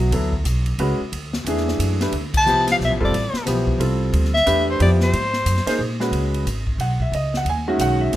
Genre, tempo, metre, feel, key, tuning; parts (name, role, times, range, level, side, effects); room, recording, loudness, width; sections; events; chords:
modal jazz; 180 BPM; 3/4; swing 62% on 8ths; A4 = 440 Hz
clear concert grand piano; accompaniment; 0.0-8.2 s; D#3 to G#5; -22 LUFS; equal
upright bass; bass; 0.0-8.2 s; F1 to A#2; -21 LUFS; equal
swinging big-band drum kit; drums; 0.0-8.2 s; crash cymbal, hi-hat, kick drum, ride cymbal, snare drum; -28 LUFS; left 1 dB
breathy soprano saxophone; melody; 2.4-5.8 s; C5 to A5; -19 LUFS; left 1 dB; plate reverb
light reverb; -18 LUFS; side -14 dB against mid
0.0-6.1 A section; 6.1-8.2 B section
band accent 2.3
0.0 Bm11; 2.1 Dm11; 5.1 G#9; 6.1 C#9sus4